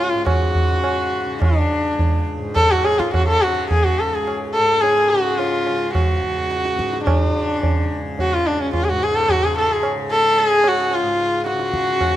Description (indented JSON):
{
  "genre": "indian classical, Hindustani",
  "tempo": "107 BPM",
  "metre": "5/4",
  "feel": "straight",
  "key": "C# raga bhairav",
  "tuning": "A4 = 441 Hz",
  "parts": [
    { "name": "rich sarangi", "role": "melody", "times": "0.0-12.2 s", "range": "C#4 to A4+23c", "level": "-18 LUFS", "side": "equal", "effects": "none" },
    { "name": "tanpura", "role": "drone", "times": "0.0-12.2 s", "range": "C#2 to C#3", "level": "-27 LUFS", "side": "left 1 dB", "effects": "none" },
    { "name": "tabla", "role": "percussion", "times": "0.3-12.2 s", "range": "none", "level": "-22 LUFS", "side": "right 1 dB", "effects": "none" }
  ],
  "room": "light reverb",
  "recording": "close, detailed microphones",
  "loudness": "-16 LUFS",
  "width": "side -13 dB against mid",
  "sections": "0.0-12.2 A section",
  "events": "speeding up 0.0-12.2",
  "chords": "none"
}